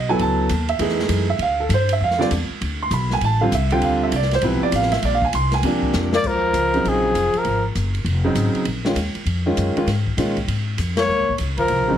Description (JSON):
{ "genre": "modal jazz", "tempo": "198 BPM", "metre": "4/4", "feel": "swing 63% on 8ths", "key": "Eb dorian from 6.2 s", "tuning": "A4 = 440 Hz", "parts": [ { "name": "warm concert grand piano", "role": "accompaniment", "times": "0.0-12.0 s", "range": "C3 to C6", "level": "-20 LUFS", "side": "right 2 dB", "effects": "none" }, { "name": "upright bass", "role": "bass", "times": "0.0-12.0 s", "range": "F1 to Bb2", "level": "-22 LUFS", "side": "left 1 dB", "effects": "none" }, { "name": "open jazz drum kit", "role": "drums", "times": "0.2-11.8 s", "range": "crash cymbal, hi-hat, kick drum, ride cymbal, snare drum", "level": "-28 LUFS", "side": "equal", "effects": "none" }, { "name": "breathy tenor saxophone", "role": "second line", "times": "6.1-7.6, 11.0-12.0 s", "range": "F3 to Bb3", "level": "-24 LUFS", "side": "left 6 dB", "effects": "none" }, { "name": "breathy trumpet", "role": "melody", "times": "6.2-7.7, 11.0-12.0 s", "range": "Ab4 to D5", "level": "-20 LUFS", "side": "equal", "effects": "plate reverb" } ], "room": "moderate club reverb, RT60 0.6 s", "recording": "heavily compressed radio sound", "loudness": "-18 LUFS", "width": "side -10 dB against mid", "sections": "0.0-6.2 A section; 6.2-12.0 B section", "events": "drum fill 5.9-6.2; band accent 10.9", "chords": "0.0 F#m9; 1.4 Dm9; 5.0 A#9; 6.2 Eb9sus4" }